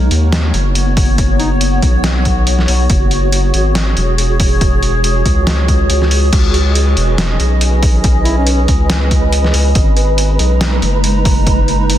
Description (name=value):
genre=deep dubstep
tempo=140 BPM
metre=4/4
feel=swing 56% on 16ths, half-time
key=C# dorian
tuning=A4 = 440 Hz
part: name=granular cloud pad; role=sustained chords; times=0.0-12.0 s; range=G#3 to A#5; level=-18 LUFS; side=equal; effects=built-in reverb
part: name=saturated sub bass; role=bass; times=0.0-12.0 s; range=E1 to D#2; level=-14 LUFS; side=equal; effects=none
part: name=trip hop sampler-style drum kit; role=drums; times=0.1-12.0 s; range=crash cymbal, hi-hat, snare drum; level=-19 LUFS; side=equal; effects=none
part: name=electronic kick drum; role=drums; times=1.0-11.6 s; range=none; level=-14 LUFS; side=equal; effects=overdrive
part: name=mellow duduk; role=melody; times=1.4-1.5, 8.3-8.7 s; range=C#4 to E4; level=-24 LUFS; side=equal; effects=dub echo
part: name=flickering grainy texture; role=texture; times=6.8-12.0 s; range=B4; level=-22 LUFS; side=right 2 dB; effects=built-in reverb
room=little or no reverb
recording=dense, heavily limited modern master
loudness=-10 LUFS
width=side -12 dB against mid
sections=0.0-12.0 A section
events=none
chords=0.0 Badd9; 2.9 F#sus2; 6.3 C#m; 9.8 G#m